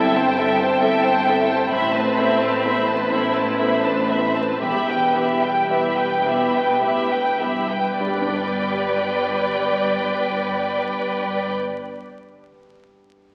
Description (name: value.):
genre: cinematic, emotional film score for orchestra.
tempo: 33-46 BPM (dotted quarters).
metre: 6/8.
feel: rubato.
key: G major.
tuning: A4 = 440 Hz.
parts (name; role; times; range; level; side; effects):
rich studio violin section; melody; 0.0-11.5 s; G5 to B5; -29 LUFS; equal; none.
warm studio violin section; second line; 0.0-11.5 s; G4 to G5; -23 LUFS; equal; none.
clear concert grand piano; accompaniment; 0.0-13.3 s; E2 to D5; -27 LUFS; equal; none.
rich studio viola section; accompaniment; 0.0-11.5 s; G3 to E4; -32 LUFS; equal; none.
rich studio double bass section; bass; 0.0-11.5 s; E1 to A1; -34 LUFS; equal; none.
warm studio cello section; bass; 0.0-11.5 s; E2 to B2; -34 LUFS; equal; none.
room: wet concert hall reverb, RT60 1.8 s.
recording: very old 78 rpm record, vinyl crackle.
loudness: -20 LUFS.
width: mono.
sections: 0.0-8.0 A section; 8.0-11.6 B section.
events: slowing down 0.4-8.0.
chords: 0.0 C6/G; 1.7 Amadd9; 4.6 Em; 8.0 G.